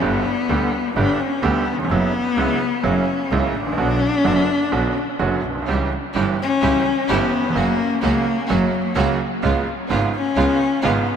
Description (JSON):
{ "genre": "tango", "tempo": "128 BPM", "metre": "4/4", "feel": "rubato", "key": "unclear", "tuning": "A4 = 435 Hz", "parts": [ { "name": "warm cello", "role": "second line", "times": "0.0-11.2 s", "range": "F#3 to D4", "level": "-21 LUFS", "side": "left 4 dB", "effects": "none" }, { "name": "bright grand piano", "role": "accompaniment", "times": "0.0-11.2 s", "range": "F#1 to G4", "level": "-22 LUFS", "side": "right 4 dB", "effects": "none" }, { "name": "clear double bass", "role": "bass", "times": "0.0-11.0 s", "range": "F#1 to D2", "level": "-24 LUFS", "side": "right 2 dB", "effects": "none" }, { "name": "clear studio string section", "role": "stabs", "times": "5.7-11.0 s", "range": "G3 to F#4", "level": "-27 LUFS", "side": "right 3 dB", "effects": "none" } ], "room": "wet huge ambient reverb, RT60 7.2 s", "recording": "in a vast, echoing space", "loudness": "-17 LUFS", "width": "side -8 dB against mid", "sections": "0.0-11.2 A section", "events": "cello solo 0.0-11.2", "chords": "0.0 G; 1.9 F#7sus4; 2.8 F#7; 3.8 Bm; 5.7 C#dim; 7.6 F#; 9.4 C#7" }